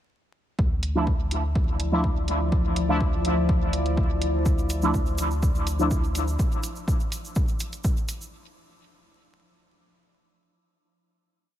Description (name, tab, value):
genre	dub techno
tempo	124 BPM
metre	4/4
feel	straight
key	D minor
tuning	A4 = 440 Hz
part	deep dark ambient pad	sustained chords	1.8-6.4 s	F3 to D5	-30 LUFS	left 1 dB	chorus, built-in reverb, sidechain pumping
part	soft dub sub bass	bass	0.6-6.4 s	D2	-27 LUFS	equal	sidechain pumping
part	electronic kick drum	drums	0.6-7.9 s	none	-25 LUFS	equal	none
part	electronic hi-hat	drums	0.8-8.2 s	none	-36 LUFS	right 2 dB	dub echo
part	resonant sweep polysynth	stabs	1.0-5.9 s	F3 to E4	-28 LUFS	equal	chorus, phaser, cassette tape, sidechain pumping, dub echo
part	egg shaker	percussion	4.5-8.3 s	none	-40 LUFS	right 2 dB	none
room	little or no reverb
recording	vinyl crackle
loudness	-22 LUFS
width	side -12 dB against mid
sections	0.6-8.3 groove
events	none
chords	0.6 Dmadd9